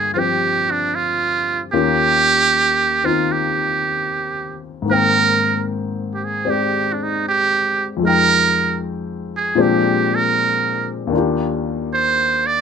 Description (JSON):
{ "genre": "jazz ballad", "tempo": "77 BPM", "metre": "4/4", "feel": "swing 69% on 8ths", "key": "Eb major", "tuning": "A4 = 441 Hz", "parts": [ { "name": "trumpet with metal mute", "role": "melody", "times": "0.0-12.6 s", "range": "D4 to D5", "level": "-16 LUFS", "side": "right 5 dB", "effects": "none" }, { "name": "warm grand piano", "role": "accompaniment", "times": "0.0-12.6 s", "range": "Eb2 to G5", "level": "-20 LUFS", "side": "left 5 dB", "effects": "none" } ], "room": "light reverb", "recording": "close, detailed microphones", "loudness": "-15 LUFS", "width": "side -6 dB against mid", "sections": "0.0-12.6 A section", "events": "none", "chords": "0.0 Gm7; 1.7 Eb9; 4.9 Abmaj9; 8.0 Fm9; 9.6 Bb13; 11.1 Ebmaj9" }